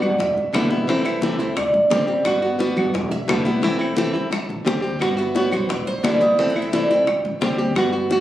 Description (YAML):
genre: latin, Cuban son and guajira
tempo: 174 BPM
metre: 4/4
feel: straight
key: unclear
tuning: A4 = 445 Hz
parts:
  - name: nylon-string guitar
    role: accompaniment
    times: 0.0-8.2 s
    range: B2 to G4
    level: -22 LUFS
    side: equal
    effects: none
  - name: Cuban tres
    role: arpeggios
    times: 0.0-7.7 s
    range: B4 to A5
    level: -22 LUFS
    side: right 1 dB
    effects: none
  - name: upright bass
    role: bass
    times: 0.0-8.2 s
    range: E1 to D2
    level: -29 LUFS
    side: equal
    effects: none
  - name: bongos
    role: percussion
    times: 0.0-8.2 s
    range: none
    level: -28 LUFS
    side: left 4 dB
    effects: none
  - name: claves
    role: percussion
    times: 0.0-7.9 s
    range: none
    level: -32 LUFS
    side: equal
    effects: none
  - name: congas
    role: percussion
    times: 0.0-8.2 s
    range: none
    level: -27 LUFS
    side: equal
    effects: none
room: moderate plate reverb, RT60 3.4 s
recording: recorded on a phone in the room, club reverb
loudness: -18 LUFS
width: side -13 dB against mid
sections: 0.0-8.2 A section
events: Cuban tres solo 0.0-8.2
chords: 0.2 Em7; 0.9 C6; 1.6 D7sus4; 2.3 Gmaj7; 2.9 Em7; 3.6 C6; 4.3 D7sus4; 5.0 Gmaj7; 5.7 Em7; 6.4 C6; 7.1 D7sus4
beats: 0.19 0.54 | 0.88 1.23 1.57 1.91 | 2.26 2.60 2.95 3.29 | 3.64 3.98 4.33 4.67 | 5.01 5.36 5.70 6.05 | 6.39 6.74 7.08 7.42 | 7.77 8.11